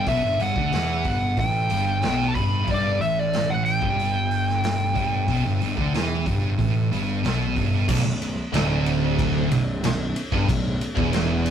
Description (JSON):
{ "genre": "stoner and doom metal", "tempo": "92 BPM", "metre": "4/4", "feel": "straight", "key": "B minor", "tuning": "A4 = 440 Hz", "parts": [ { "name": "fuzz lead guitar", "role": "melody", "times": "0.0-7.2 s", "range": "D5 to B5", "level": "-25 LUFS", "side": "equal", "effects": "wah, distortion" }, { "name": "thick fuzz guitar", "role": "riff", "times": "0.0-11.5 s", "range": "B1 to E3", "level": "-28 LUFS", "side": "left 2 dB", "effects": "distortion" }, { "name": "thick fuzz guitar", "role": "riff", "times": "0.0-11.5 s", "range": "B1 to E3", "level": "-26 LUFS", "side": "right 3 dB", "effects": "distortion" }, { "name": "fuzz picked electric bass", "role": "bass", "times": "0.0-11.5 s", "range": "B0 to E2", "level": "-27 LUFS", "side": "equal", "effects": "overdrive" }, { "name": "raw garage drum kit", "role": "drums", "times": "0.1-11.5 s", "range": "crash cymbal, hi-hat, kick drum, ride cymbal, snare drum", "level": "-28 LUFS", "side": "equal", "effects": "none" }, { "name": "tight distorted guitar", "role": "riff", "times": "7.9-11.5 s", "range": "B1 to G2", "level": "-27 LUFS", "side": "right 2 dB", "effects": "distortion" } ], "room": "moderate small room ambience, RT60 0.5 s", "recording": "rough rehearsal-room recording", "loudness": "-20 LUFS", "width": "side -8 dB against mid", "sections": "0.0-7.9 A section; 7.9-11.5 B section", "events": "none", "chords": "0.0 G5; 7.9 Bm" }